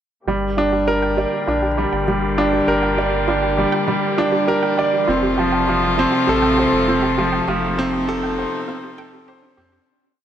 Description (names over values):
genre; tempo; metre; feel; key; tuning
piano and strings electronica; 100 BPM; 4/4; straight; G minor; A4 = 441 Hz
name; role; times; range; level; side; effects
rich string quartet; sustained chords; 0.3-9.9 s; C3 to G4; -23 LUFS; left 2 dB; low-pass filter
wide unison pluck; arpeggios; 0.3-9.8 s; D4 to G5; -27 LUFS; right 3 dB; tape echo
clear concert grand piano; riff; 0.3-9.9 s; F3 to D5; -18 LUFS; right 1 dB; tape echo
warm sub bass; bass; 0.3-9.8 s; F1 to F2; -27 LUFS; left 1 dB; none
riser; sound effects; 4.3-9.9 s; none; -35 LUFS; right 2 dB; none
room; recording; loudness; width
moderate huge ambient reverb, RT60 4.5 s; none; -16 LUFS; side -10 dB against mid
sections
0.3-9.9 build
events
build-up 0.3-9.9; filter sweep on string quartet 0.3-9.9; fade-out 6.7-9.9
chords
0.3 Gm; 5.1 F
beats
| 0.28 0.88 1.48 2.08 | 2.68 3.28 3.88 4.48 | 5.08 5.68 6.28 6.88 | 7.48 8.08 8.68 9.28